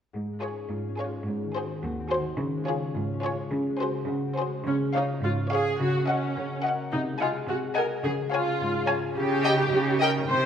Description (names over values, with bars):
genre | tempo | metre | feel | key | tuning
cinematic, playful, whimsical film cue | 107 BPM | 2/4 | straight | Db major | A4 = 440 Hz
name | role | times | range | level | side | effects
concert harp | arpeggios | 0.1-10.5 s | Ab2 to Gb5 | -32 LUFS | left 5 dB | none
clear chamber cello section | bass | 0.1-10.5 s | Eb2 to Db3 | -31 LUFS | right 2 dB | none
clear chamber violin section | melody | 0.4-10.1 s | C5 to Ab5 | -32 LUFS | left 2 dB | none
rich chamber violin section | second line | 0.4-10.1 s | Ab4 to Gb5 | -34 LUFS | left 2 dB | none
clear studio viola section | accompaniment | 0.4-10.5 s | Db4 to C5 | -28 LUFS | right 1 dB | none
room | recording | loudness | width
wet scoring stage reverb, RT60 1.7 s | none | -25 LUFS | side -8 dB against mid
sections
0.1-4.7 A section; 4.7-10.5 B section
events
none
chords
0.1 Db/Ab; 1.3 Ab7; 2.4 Db; 3.5 Ab7/Db; 4.7 Db; 5.8 Ebm7/Db; 6.9 Ab7/C; 8.1 Db; 9.2 Eb7/Db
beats
| 0.14 0.70 | 1.27 1.83 | 2.39 2.95 | 3.52 4.09 | 4.66 5.23 | 5.80 6.36 | 6.93 7.49 | 8.05 8.61 | 9.18 9.74 | 10.30